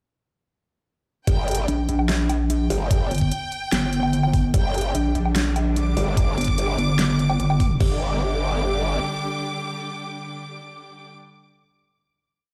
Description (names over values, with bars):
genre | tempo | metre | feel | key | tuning
heavy wobble dubstep | 147 BPM | 4/4 | half-time | G minor | A4 = 440 Hz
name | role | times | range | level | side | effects
dark studio violin section | melody | 1.3-11.1 s | G5 to D6 | -33 LUFS | equal | digital delay
growl bass | bass | 1.3-9.0 s | G1 | -26 LUFS | equal | distortion, chorus, overdrive
dubstep drum kit | drums | 1.3-7.9 s | crash cymbal, hi-hat, snare drum, woodblock | -30 LUFS | equal | overdrive
electronic kick drum | drums | 1.3-7.9 s | none | -23 LUFS | equal | overdrive
pulsing pluck wobble bass | bass | 1.7-7.8 s | G1 to Bb1 | -23 LUFS | equal | chorus, overdrive
clear symphonic string section | sustained chords | 4.5-11.1 s | D3 to G5 | -34 LUFS | equal | sidechain pumping
room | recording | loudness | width
little or no reverb | played on a big sound system in a bare room, large studio reverb | -22 LUFS | mono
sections
1.3-7.8 drop; 7.8-11.1 final chord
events
drop 1.3-7.8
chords
1.3 G5